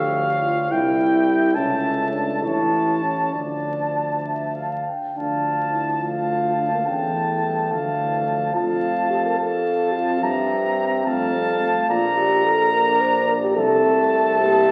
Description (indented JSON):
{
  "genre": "classical, brass quintet",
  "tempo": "71 BPM (dotted quarters)",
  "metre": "6/8",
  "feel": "rubato",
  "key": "D minor",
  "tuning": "A4 = 440 Hz",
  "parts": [
    { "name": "clear trumpet", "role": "melody", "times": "0.0-14.7 s", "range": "F5 to Bb5", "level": "-25 LUFS", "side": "equal", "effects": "none" },
    { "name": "mellow flugelhorn", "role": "second line", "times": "0.0-14.7 s", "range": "C#5 to G5", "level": "-28 LUFS", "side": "equal", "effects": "none" },
    { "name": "mellow French horn", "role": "accompaniment", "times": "0.0-14.7 s", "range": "E3 to G4", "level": "-29 LUFS", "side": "equal", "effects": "none" },
    { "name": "warm euphonium", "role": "accompaniment", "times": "0.0-14.7 s", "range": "F3 to C5", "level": "-27 LUFS", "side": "equal", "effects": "none" },
    { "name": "clear tuba", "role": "bass", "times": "0.0-14.7 s", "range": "A1 to G2", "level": "-30 LUFS", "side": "equal", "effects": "none" }
  ],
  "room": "wet scoring stage reverb, RT60 1.6 s",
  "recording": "very old 78 rpm record, vinyl crackle",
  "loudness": "-21 LUFS",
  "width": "mono",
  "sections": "0.0-5.2 A section; 5.2-14.7 A section",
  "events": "none",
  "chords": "0.0 Dm; 0.7 C; 1.6 A/C#; 2.4 A; 3.3 Dm; 6.9 A5/E; 7.7 Dm; 8.5 F; 10.2 C7/G; 11.1 F; 11.9 Bbmaj13; 13.6 C7"
}